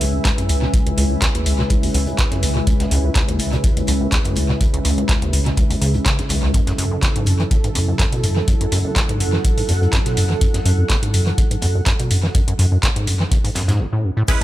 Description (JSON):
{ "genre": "acid house", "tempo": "124 BPM", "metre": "4/4", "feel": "swing 54% on 16ths", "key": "unclear", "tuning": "A4 = 439 Hz", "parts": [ { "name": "warm analog pad", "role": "sustained chords", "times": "0.0-14.4 s", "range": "C#3 to B4", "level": "-26 LUFS", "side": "left 1 dB", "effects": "chorus, vintage 12-bit sampler grit, sidechain pumping" }, { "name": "deep acid bass", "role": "riff", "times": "0.0-14.4 s", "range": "F#1 to E3", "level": "-21 LUFS", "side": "equal", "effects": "tube saturation, sidechain pumping, tape echo" }, { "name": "warm sub bass", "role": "bass", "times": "0.0-13.7 s", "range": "B1 to F#2", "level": "-20 LUFS", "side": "equal", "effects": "sidechain pumping" }, { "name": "crunchy breakbeat drum kit", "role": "drums", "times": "0.0-14.4 s", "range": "hi-hat, snare drum", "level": "-34 LUFS", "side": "equal", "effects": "none" }, { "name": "electro analog drum machine", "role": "drums", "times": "0.0-14.4 s", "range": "cowbell, crash cymbal, handclaps, hi-hat", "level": "-24 LUFS", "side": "equal", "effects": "studio ambience, tape echo" }, { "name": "deep dark ambient pad", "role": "texture", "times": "0.0-14.4 s", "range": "C#4 to G#5", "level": "-29 LUFS", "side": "right 4 dB", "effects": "chorus, built-in reverb, sidechain pumping" }, { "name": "electronic kick drum", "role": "drums", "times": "0.2-14.4 s", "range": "none", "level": "-19 LUFS", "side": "equal", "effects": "studio ambience" }, { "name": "band-passed chord stab", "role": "stabs", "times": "14.3-14.4 s", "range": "G#3 to B4", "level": "-21 LUFS", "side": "right 2 dB", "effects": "chorus" }, { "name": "tube shaker", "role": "percussion", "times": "14.3-14.4 s", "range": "none", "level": "-35 LUFS", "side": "left 3 dB", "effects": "none" } ], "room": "light reverb, digital ambience", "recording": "echo-heavy mix", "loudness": "-15 LUFS", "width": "side -14 dB against mid", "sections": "0.0-14.3 A section", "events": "filter sweep on acid bass 0.0-14.3", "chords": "0.0 C#m7; 6.5 F#m7", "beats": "0.25 | 0.73 1.22 1.70 2.19 | 2.67 3.15 3.64 4.12 | 4.61 5.09 5.57 6.06 | 6.54 7.03 7.51 7.99 | 8.48 8.96 9.44 9.93 | 10.41 10.90 11.38 11.86 | 12.35 12.83 13.31 13.80 | 14.28" }